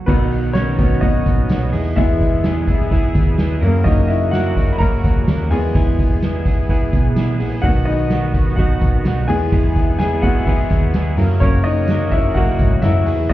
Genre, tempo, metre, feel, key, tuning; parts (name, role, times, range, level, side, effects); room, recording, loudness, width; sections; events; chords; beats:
piano-driven pop; 127 BPM; 4/4; swing 56% on 16ths; F# mixolydian; A4 = 436 Hz
direct-recorded clean electric guitar; riff; 0.0-13.3 s; F#2 to A#4; -24 LUFS; right 6 dB
bright grand piano; accompaniment; 0.1-13.3 s; B2 to B5; -21 LUFS; left 3 dB
sweeping resonant pad; sustained chords; 0.1-13.3 s; C#3 to G#4; -26 LUFS; left 1 dB; chorus
hollow-body short-scale fingered electric bass; bass; 0.1-13.3 s; A#1 to B2; -19 LUFS; equal
soft-mallet drum kit; drums; 0.1-13.3 s; crash cymbal, hi-hat, kick drum, snare drum; -18 LUFS; equal
tambourine; percussion; 0.1-13.3 s; -55 LUFS; left 5 dB
little or no reverb; heard muffled through a wall, club reverb, EQ; -14 LUFS; side -15 dB against mid
0.1-13.3 A section
grand piano solo 0.1-13.3
0.1 B; 1.7 E; 3.6 F#; 5.5 E; 7.6 B; 9.3 E; 11.2 F#
| 0.08 0.55 1.02 1.50 | 1.97 2.44 2.92 3.39 | 3.86 4.33 4.80 5.28 | 5.75 6.22 6.69 7.17 | 7.64 8.11 8.58 9.05 | 9.53 10.00 10.47 10.94 | 11.41 11.88 12.36 12.83 | 13.30